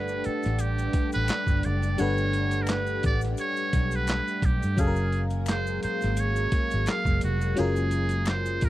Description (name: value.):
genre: R&B, neo-soul.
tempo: 86 BPM.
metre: 4/4.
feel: swing 56% on 16ths.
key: unclear.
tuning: A4 = 438 Hz.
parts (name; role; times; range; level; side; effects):
trumpet with metal mute; melody; 0.0-8.7 s; F#4 to E#5; -30 LUFS; right 2 dB; none.
FM electric piano; accompaniment; 0.0-8.7 s; F#3 to F#5; -31 LUFS; left 2 dB; chorus, phaser.
string machine, full ensemble; sustained chords; 0.0-8.7 s; F#3 to G#4; -34 LUFS; right 1 dB; ensemble chorus.
vintage muted fingered electric bass; bass; 0.0-8.7 s; E#1 to G2; -27 LUFS; equal; none.
maracas and finger snaps; percussion; 0.1-8.6 s; none; -44 LUFS; left 7 dB; none.
boom bap sampler-style drum kit; drums; 0.2-8.7 s; handclaps, hi-hat, kick drum, snare drum; -28 LUFS; equal; none.
room: little or no reverb.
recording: dry, close 1970s-style studio recording.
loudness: -23 LUFS.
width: side -15 dB against mid.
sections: 0.0-8.7 A section.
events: none.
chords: 0.0 Gmaj9; 4.8 F#maj9.